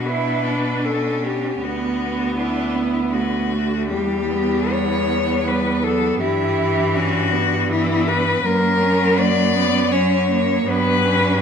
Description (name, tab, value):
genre	classical, lyrical piece for cello ensemble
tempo	80 BPM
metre	3/4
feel	rubato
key	B minor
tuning	A4 = 440 Hz
part	rich cello	melody	0.0-11.4 s	E4 to D5	-21 LUFS	left 5 dB	none
part	clear cello	accompaniment	0.0-11.4 s	E3 to D4	-24 LUFS	left 1 dB	none
part	bright cello	bass	0.0-11.4 s	D2 to B2	-24 LUFS	right 2 dB	none
part	clear cello	second line	0.1-11.4 s	G3 to E4	-24 LUFS	right 8 dB	none
room	wet recital hall reverb, RT60 1.4 s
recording	minimal, uncompressed stereo recording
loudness	-17 LUFS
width	side -7 dB against mid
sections	0.0-11.4 A section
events	none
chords	0.0 Bm; 1.6 Bm/D; 3.9 Em; 6.2 Em/G; 8.5 F#; 10.7 Gmaj7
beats	0.06 0.85 | 1.63 2.39 3.15 | 3.90 4.71 5.48 | 6.22 6.97 7.71 | 8.45 9.19 9.93 | 10.68 11.42